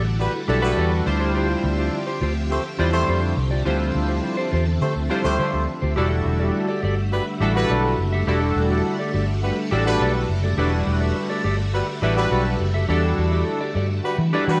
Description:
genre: funk.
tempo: 104 BPM.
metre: 4/4.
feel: straight.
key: E minor.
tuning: A4 = 440 Hz.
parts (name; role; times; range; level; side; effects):
string machine, violins; sustained chords; 0.0-14.6 s; D3 to E5; -31 LUFS; equal; ensemble chorus.
mellow electric guitar; riff; 0.0-14.5 s; F4 to E5; -31 LUFS; equal; lush chorus.
vintage muted fingered electric bass; bass; 0.0-14.6 s; E1 to E3; -25 LUFS; equal; none.
warm horn section; second line; 0.2-14.6 s; G3 to C5; -28 LUFS; equal; slapback echo.
chorused polysynth; accompaniment; 0.5-14.6 s; G3 to C5; -27 LUFS; equal; none.
room: moderate echo chamber reverb, RT60 1.3 s.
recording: none.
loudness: -22 LUFS.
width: mono.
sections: 0.0-14.6 A section.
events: none.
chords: 0.0 Em11; 1.1 Dm11; 6.0 Em11.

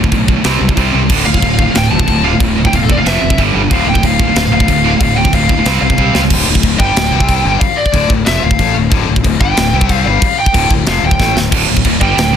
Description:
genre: heavy metal.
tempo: 184 BPM.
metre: 4/4.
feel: straight.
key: D minor.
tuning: A4 = 440 Hz.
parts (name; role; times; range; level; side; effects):
high-gain distorted guitar; riff; 0.0-12.4 s; D2 to C4; -17 LUFS; left 11 dB; distortion.
high-gain distorted guitar; riff; 0.0-6.3, 11.5-12.4 s; D2 to C4; -16 LUFS; right 11 dB; distortion.
fuzz fingered electric bass; bass; 0.0-12.4 s; D1 to C#2; -17 LUFS; equal; overdrive.
tight metal drum kit; drums; 0.0-12.3 s; china cymbal, crash cymbal, kick drum, snare drum, toms; -14 LUFS; equal; none.
high-gain lead guitar; melody; 1.3-12.4 s; A4 to A5; -16 LUFS; left 1 dB; distortion.
room: studio reverb.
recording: dense, heavily limited modern master.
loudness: -9 LUFS.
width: side -8 dB against mid.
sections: 0.0-6.3 A section; 6.3-12.4 B section.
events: lead electric guitar solo 0.0-6.3; drum fill 6.0-6.3, 11.2-11.5.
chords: 0.4 C5; 1.1 Dm; 3.1 F5; 3.4 G5; 3.7 Dm; 5.7 C5; 6.3 D5; 7.1 C5; 7.4 Dm; 9.7 C5; 10.1 Dm.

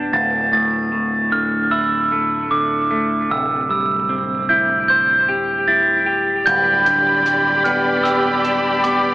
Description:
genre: post-rock.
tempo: 76 BPM.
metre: 4/4.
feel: straight.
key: unclear.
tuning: A4 = 443 Hz.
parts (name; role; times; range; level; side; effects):
clean electric guitar; arpeggios; 0.0-9.1 s; D2 to C5; -22 LUFS; left 1 dB; wide subtle chorus, diffuse ambient delay.
glockenspiel with rubber mallets; arpeggios; 0.0-9.1 s; D6 to A6; -16 LUFS; right 1 dB; diffuse ambient delay.
growling picked electric bass; bass; 0.0-9.1 s; D1; -30 LUFS; equal; overdrive.
clear symphonic string section; sustained chords; 6.5-9.1 s; G4 to B5; -19 LUFS; equal; none.
hi-hat; drums; 6.5-9.0 s; none; -38 LUFS; left 1 dB; none.
room: wet plate reverb, RT60 2.8 s.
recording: dreamy mix soaked in reverb, AM radio sound.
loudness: -15 LUFS.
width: side -18 dB against mid.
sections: 0.0-9.1 A section.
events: none.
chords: 0.1 Dmadd9; 3.3 C/D; 6.5 G7/D.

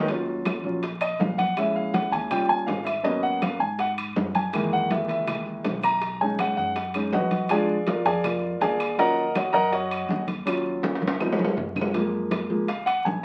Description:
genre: Afro-Cuban jazz.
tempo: 162 BPM.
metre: 4/4.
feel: straight.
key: Eb minor.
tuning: A4 = 442 Hz.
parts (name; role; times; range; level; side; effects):
warm baby grand piano; accompaniment; 0.0-13.2 s; Eb3 to Bb5; -26 LUFS; equal; none.
upright bass; bass; 0.0-13.2 s; Ab1 to Ab2; -38 LUFS; equal; none.
bongos; percussion; 0.1-13.2 s; none; -38 LUFS; equal; none.
congas; percussion; 0.1-13.2 s; none; -32 LUFS; equal; none.
timbales; percussion; 0.1-13.1 s; none; -34 LUFS; equal; none.
claves; percussion; 0.5-11.9 s; none; -39 LUFS; equal; none.
room: moderate studio reverb, RT60 0.6 s.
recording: very old 78 rpm record, vinyl crackle.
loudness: -25 LUFS.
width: mono.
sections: 0.1-11.9 A section; 11.9-13.2 A section.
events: grand piano solo 0.1-13.2; drum fill 10.8-11.9.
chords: 0.1 Ebm7; 1.6 Bbm7b5; 2.3 Eb7; 3.1 Abm11; 4.5 Gb13; 6.0 B6; 7.5 Bb7; 9.0 Ebm7; 11.2 Db7; 11.9 Gbmaj9.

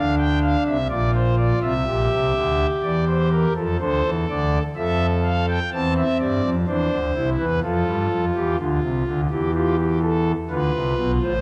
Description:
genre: classical, baroque-style 3-part fugue for pipe organ.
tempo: 62 BPM.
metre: 4/4.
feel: straight.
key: D minor.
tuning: A4 = 440 Hz.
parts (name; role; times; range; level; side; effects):
pipe organ, foundations; solo; 0.0-11.4 s; A1 to A5; -21 LUFS; equal; none.
room: wet scoring stage reverb, RT60 1.8 s.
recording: none.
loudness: -21 LUFS.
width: mono.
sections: 0.0-11.4 A section.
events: none.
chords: 0.0 Bb; 1.9 Gm/Bb; 3.8 Dm; 5.7 Am/E; 7.6 F; 9.5 Dm.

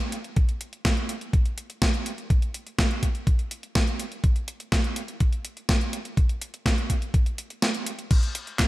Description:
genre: italo disco.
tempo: 124 BPM.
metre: 4/4.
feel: straight.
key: none.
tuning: none.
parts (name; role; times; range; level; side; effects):
clean 12-bit digital drum machine; drums; 0.0-8.7 s; crash cymbal, handclaps, hi-hat, snare drum; -28 LUFS; right 1 dB; overdrive, gated reverb.
electronic kick drum; drums; 0.4-8.7 s; none; -22 LUFS; equal; none.
room: digital ambience.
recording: none.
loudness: -23 LUFS.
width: side -18 dB against mid.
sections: 0.0-8.1 A section.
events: kick drops out 7.6-8.1.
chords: none.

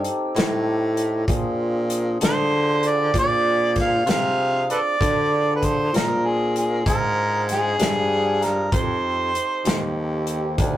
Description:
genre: slow blues.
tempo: 64 BPM (dotted quarters).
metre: 12/8.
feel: straight.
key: unclear.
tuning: A4 = 440 Hz.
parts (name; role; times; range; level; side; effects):
tonewheel organ; sustained chords; 0.0-10.8 s; C4 to A4; -30 LUFS; left 1 dB; slow rotary speaker.
warm baritone saxophone; bass; 0.0-10.8 s; D2 to D3; -23 LUFS; equal; none.
natural country drum kit; drums; 0.0-10.7 s; hi-hat, kick drum, snare drum; -24 LUFS; equal; none.
warm harmonica; melody; 2.2-10.0 s; Ab4 to F5; -22 LUFS; right 1 dB; overdrive.
room: moderate booth ambience, RT60 0.3 s.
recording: rough rehearsal-room recording.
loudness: -19 LUFS.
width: side -13 dB against mid.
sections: 0.0-10.8 A section.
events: none.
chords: 0.0 F9 (rootless); 1.3 Bb9; 8.7 F9.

